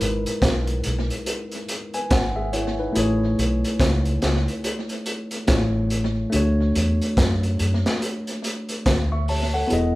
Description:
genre	lovers rock reggae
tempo	71 BPM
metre	4/4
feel	swing 61% on 16ths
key	unclear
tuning	A4 = 442 Hz
part	tine electric piano	accompaniment	0.0-10.0 s	G#3 to C#6	-25 LUFS	equal	none
part	vintage muted fingered electric bass	bass	0.0-10.0 s	E1 to F#2	-24 LUFS	equal	none
part	crunchy breakbeat drum kit	drums	0.0-9.9 s	hi-hat, kick drum, snare drum	-24 LUFS	equal	tape echo
room	moderate large studio reverb, RT60 0.8 s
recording	band playing live in one room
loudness	-20 LUFS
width	side -18 dB against mid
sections	0.0-10.0 A section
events	none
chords	0.0 Emaj7; 3.0 Amaj7; 6.3 Dmaj7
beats	0.42 1.26 2.11 | 2.95 3.80 4.64 5.48 | 6.33 7.17 8.02 8.86 | 9.71

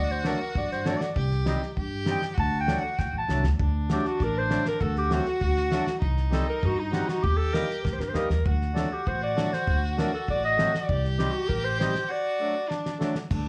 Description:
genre	klezmer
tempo	99 BPM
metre	2/4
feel	straight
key	D phrygian dominant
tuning	A4 = 440 Hz
part	mellow clarinet	melody	0.0-13.0 s	Eb4 to A5	-31 LUFS	equal	none
part	rich violin	second line	0.0-13.5 s	D4 to G4	-36 LUFS	equal	none
part	upright bass	bass	0.0-13.5 s	A1 to A2	-30 LUFS	equal	none
part	damped 70s drum kit	drums	0.1-13.4 s	crash cymbal, kick drum, snare drum	-33 LUFS	equal	none
part	accordion	accompaniment	0.2-13.2 s	F#3 to F#4	-34 LUFS	equal	none
room	moderate studio reverb, RT60 0.6 s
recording	small room ambience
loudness	-26 LUFS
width	mono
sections	0.0-3.6 A section; 3.6-13.3 B section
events	clarinet solo 0.0-3.6; drum fill 3.0-3.6, 7.8-8.4, 12.7-13.3; break 12.1-13.3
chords	0.0 D; 1.2 Cm; 2.4 D; 6.0 Cm; 7.2 Eb; 8.4 D; 10.9 Cm; 12.1 D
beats	0.55 | 1.16 1.77 | 2.37 2.98 | 3.59 4.19 | 4.80 5.41 | 6.01 6.62 | 7.23 7.83 | 8.44 9.05 | 9.65 10.26 | 10.87 11.48 | 12.09 12.69 | 13.30

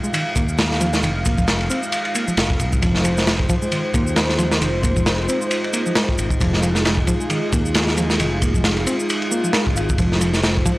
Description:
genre	breakbeat, breaks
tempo	134 BPM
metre	4/4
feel	swing 57% on 16ths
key	F minor pentatonic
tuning	A4 = 440 Hz
part	dark analog pad	sustained chords	0.0-10.8 s	Ab3 to F5	-24 LUFS	equal	chorus, vintage 12-bit sampler grit, sidechain pumping
part	bright reed electric piano	riff	0.0-10.7 s	Eb3 to C4	-24 LUFS	equal	vintage 12-bit sampler grit, analog delay
part	shaker	drums	0.0-10.8 s	none	-30 LUFS	right 1 dB	overdrive
part	crunchy breakbeat drum kit	drums	0.1-10.8 s	kick drum, ride cymbal, snare drum	-20 LUFS	equal	none
part	fingered electric bass	bass	0.4-10.6 s	F1 to Eb2	-23 LUFS	equal	tube saturation
part	swell	sound effects	9.2-10.0 s	none	-30 LUFS	left 2 dB	none
room	little or no reverb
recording	dry, gritty hardware recording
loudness	-17 LUFS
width	side -19 dB against mid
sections	0.0-10.8 A section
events	swell 9.2-10.0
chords	0.0 Fm7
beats	0.14 0.58 | 1.03 1.48 1.93 2.38 | 2.82 3.27 3.72 4.17 | 4.61 5.06 5.51 5.96 | 6.41 6.85 7.30 7.75 | 8.20 8.64 9.09 9.54 | 9.99 10.44

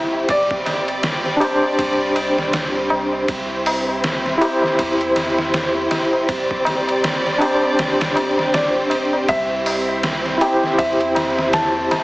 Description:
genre	trip hop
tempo	80 BPM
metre	4/4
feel	swing 59% on 16ths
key	unclear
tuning	A4 = 440 Hz
part	felt-muted upright piano	melody	0.0-2.9, 8.5-12.0 s	D5 to A5	-22 LUFS	equal	dub echo
part	overdriven tine electric piano	accompaniment	0.0-12.0 s	D4 to C5	-20 LUFS	equal	medium tremolo, tape echo
part	warm symphonic violin section	sustained chords	0.0-12.0 s	G3 to D5	-22 LUFS	equal	none
part	soft dub sub bass	bass	0.0-12.0 s	F1 to E2	-38 LUFS	equal	none
part	bowed-like drone	texture	0.2-12.0 s	C4	-29 LUFS	right 2 dB	built-in reverb
part	tabla	percussion	0.1-12.0 s	none	-26 LUFS	left 1 dB	none
part	trip hop sampler-style drum kit	drums	0.3-12.0 s	hi-hat, kick drum, ride cymbal, snare drum	-24 LUFS	equal	overdrive, vintage 12-bit sampler grit
room	moderate spring reverb, RT60 2.0 s, digital ambience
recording	heavily compressed radio sound, multiband compression, small speaker sound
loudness	-16 LUFS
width	side -21 dB against mid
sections	0.0-12.0 A section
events	none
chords	0.3 Gsus4; 3.3 C; 6.3 Gsus4; 9.3 C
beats	| 0.29 1.04 1.79 2.54 | 3.29 4.04 4.79 5.54 | 6.29 7.04 7.79 8.54 | 9.29 10.04 10.79 11.54

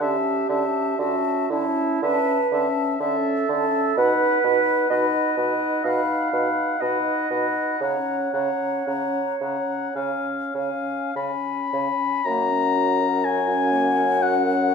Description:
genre	classical, slow romantic movement for wind quintet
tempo	47-65 BPM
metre	4/4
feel	rubato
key	F# major from 4.0 s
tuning	A4 = 439 Hz
part	mellow hollow concert flute	melody	0.0-14.7 s	F#5 to B5	-28 LUFS	left 8 dB	none
part	warm oboe	second line	0.0-14.7 s	E5 to B5	-25 LUFS	left 6 dB	none
part	mellow clarinet	accompaniment	0.0-14.7 s	A#3 to E#5	-25 LUFS	right 7 dB	none
part	warm French horn	accompaniment	0.0-14.7 s	C#4 to D#4	-29 LUFS	equal	none
part	mellow bassoon	bass	0.0-14.7 s	F#2 to D3	-27 LUFS	right 3 dB	none
room	wet recital hall reverb, RT60 1.7 s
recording	minimal, uncompressed stereo recording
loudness	-20 LUFS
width	side -5 dB against mid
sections	0.0-12.3 A section; 12.3-14.7 B section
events	none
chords	0.0 A7/D; 4.0 B; 7.8 F#/C#; 12.3 F#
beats	| 0.01 0.99 2.04 3.01 | 3.97 4.91 5.85 6.81 | 7.81 8.87 9.95 11.16 | 12.26 13.25 14.22

